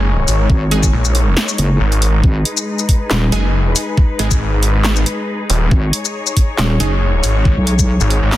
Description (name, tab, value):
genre	heavy wobble dubstep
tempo	138 BPM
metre	4/4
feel	swing 54% on 16ths, half-time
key	G# minor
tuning	A4 = 440 Hz
part	rich symphonic string section	sustained chords	0.0-8.4 s	G#3 to C#5	-23 LUFS	left 2 dB	sidechain pumping, low-pass filter
part	snarling distorted saw bass	bass	0.0-8.3 s	D#1 to A#1	-14 LUFS	equal	distortion, overdrive
part	big-room dance drum kit	drums	0.3-8.4 s	handclaps, hi-hat, shaker, snare drum	-19 LUFS	left 1 dB	none
part	wobble bass	bass	0.5-8.0 s	D#1 to B1	-14 LUFS	equal	chorus, overdrive
part	electronic kick drum	drums	0.5-7.9 s	none	-13 LUFS	equal	none
part	orchestra-hit-like synth stab	stabs	0.7-6.9 s	G#3 to G#4	-25 LUFS	right 3 dB	built-in reverb, tape echo
room	little or no reverb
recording	dense, heavily limited modern master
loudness	-12 LUFS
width	side -15 dB against mid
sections	0.0-8.4 A section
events	none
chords	0.0 G#madd9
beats	0.06 | 0.50 0.93 1.37 1.80 | 2.24 2.67 3.10 3.54 | 3.98 4.41 4.84 5.28 | 5.71 6.15 6.58 7.02 | 7.45 7.89 8.32